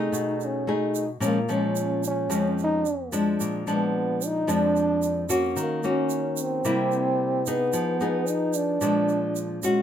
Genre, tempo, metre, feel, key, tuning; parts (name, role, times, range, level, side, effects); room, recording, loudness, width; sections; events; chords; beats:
bossa nova; 111 BPM; 4/4; straight; A4 = 439 Hz
breathy trombone; melody; 0.0-9.6 s; Bb3 to Eb4; -26 LUFS; right 1 dB
nylon-string guitar; accompaniment; 0.0-9.8 s; F2 to Ab4; -25 LUFS; left 1 dB
egg shaker; percussion; 0.1-9.8 s; -35 LUFS; right 10 dB
light reverb; minimal, uncompressed stereo recording; -22 LUFS; side -9 dB against mid
0.0-9.8 A section
0.1 B6; 1.2 Bbm7; 3.4 Bb7; 5.6 Ebm7; 6.7 C7; 7.7 Fm7b5; 8.8 Bb7
0.14 0.68 | 1.22 1.77 2.31 2.85 | 3.40 3.94 4.48 5.02 | 5.57 6.11 6.65 7.19 | 7.74 8.28 8.82 9.36